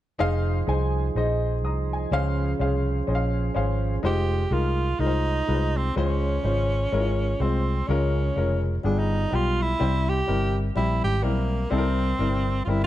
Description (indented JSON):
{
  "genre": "uptempo gospel",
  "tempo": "125 BPM",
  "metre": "4/4",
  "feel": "swing 58% on 8ths",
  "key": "F minor",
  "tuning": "A4 = 440 Hz",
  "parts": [
    { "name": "warm upright piano", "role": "accompaniment", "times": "0.2-12.9 s", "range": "G2 to Eb6", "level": "-27 LUFS", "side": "left 4 dB", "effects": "none" },
    { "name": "mellow tonewheel organ", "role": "sustained chords", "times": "0.2-4.0 s", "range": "F3 to C5", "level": "-31 LUFS", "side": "right 4 dB", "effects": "slow rotary speaker" },
    { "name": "vintage muted fingered electric bass", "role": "bass", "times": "0.2-12.9 s", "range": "F1 to Db2", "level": "-25 LUFS", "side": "equal", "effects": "none" },
    { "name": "clear tenor saxophone", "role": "melody", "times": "4.1-12.9 s", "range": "Bb3 to G4", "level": "-27 LUFS", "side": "right 2 dB", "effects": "none" }
  ],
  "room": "light reverb, small room ambience",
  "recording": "dark, warm production, nothing above 10.7 kHz",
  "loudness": "-22 LUFS",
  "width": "side -13 dB against mid",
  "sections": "0.2-4.0 A section; 4.0-12.9 B section",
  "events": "none",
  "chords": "0.2 Fm7; 2.1 Dbmaj7; 4.0 Fm7; 6.0 Dbmaj7; 7.9 Bbm7/Db; 8.8 G7b9; 9.8 C; 11.7 C7"
}